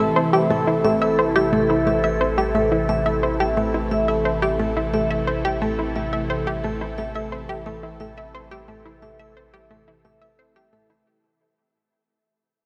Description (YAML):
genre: ambient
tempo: 88 BPM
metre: 4/4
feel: straight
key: A minor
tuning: A4 = 437 Hz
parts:
  - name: phased analog pad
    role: sustained chords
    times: 0.0-11.1 s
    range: C3 to A4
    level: -27 LUFS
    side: equal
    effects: phaser, chorus, shimmer reverb
  - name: vibraphone with medium mallets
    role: arpeggios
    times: 0.0-10.8 s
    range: A4 to A5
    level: -28 LUFS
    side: equal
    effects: analog delay, shimmer reverb
  - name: analog pluck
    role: riff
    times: 0.0-11.1 s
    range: A3 to E5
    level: -25 LUFS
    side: equal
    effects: chorus, analog delay, shimmer reverb
  - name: round analog bass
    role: bass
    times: 0.0-11.0 s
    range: A1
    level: -34 LUFS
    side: equal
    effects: none
room: wet huge ambient reverb, RT60 7.1 s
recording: none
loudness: -21 LUFS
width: mono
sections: 0.0-11.1 A section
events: filter sweep on synth arpeggio sound 0.0-11.1; fade-out 0.2-11.1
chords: 0.0 Am